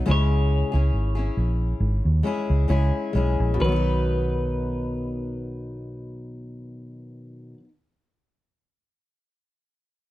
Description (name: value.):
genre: pop.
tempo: 64-72 BPM.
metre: 4/4.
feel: swing 55% on 16ths.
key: B major.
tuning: A4 = 439 Hz.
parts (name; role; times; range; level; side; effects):
fingerpicked steel-string acoustic guitar; accompaniment; 0.0-7.8 s; B2 to B4; -28 LUFS; left 2 dB; none.
clean electric guitar; melody; 0.1-7.6 s; B4 to C#5; -31 LUFS; equal; none.
vintage muted fingered electric bass; bass; 0.1-7.6 s; G#1 to D#2; -22 LUFS; equal; none.
room: light reverb.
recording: dark, warm production.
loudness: -21 LUFS.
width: side -16 dB against mid.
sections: 0.0-3.6 A section; 3.6-7.4 B section.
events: slowing down 0.0-3.6.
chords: 0.1 C#m; 3.6 B.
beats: | 0.08 0.93 1.80 2.69 | 3.61 4.55 5.49 6.42.